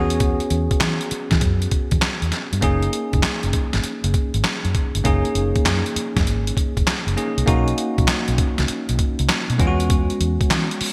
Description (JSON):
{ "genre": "R&B, new jack swing", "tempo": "99 BPM", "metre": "4/4", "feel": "swing 67% on 16ths", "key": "F# mixolydian", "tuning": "A4 = 437 Hz", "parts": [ { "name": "bell-like tine electric piano", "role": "accompaniment", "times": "0.0-10.9 s", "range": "G#3 to G#4", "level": "-27 LUFS", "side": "equal", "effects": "none" }, { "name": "vintage muted fingered electric bass", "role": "bass", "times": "0.0-10.8 s", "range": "F#1 to E3", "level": "-24 LUFS", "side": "equal", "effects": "none" }, { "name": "boom bap sampler-style drum kit", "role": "drums", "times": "0.1-10.9 s", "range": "handclaps, hi-hat, kick drum, snare drum", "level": "-23 LUFS", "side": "equal", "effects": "gated reverb" } ], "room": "moderate lush hall reverb, RT60 2.2 s", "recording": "bright 1980s-style digital production", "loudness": "-20 LUFS", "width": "mono", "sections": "0.0-10.9 A section", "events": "none", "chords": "0.0 E6; 2.6 F#69; 7.5 Bmaj9; 9.6 E6", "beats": "| 0.20 0.81 1.42 2.02 | 2.63 3.23 3.84 4.45 | 5.05 5.66 6.26 6.87 | 7.48 8.08 8.69 9.29 | 9.90 10.51" }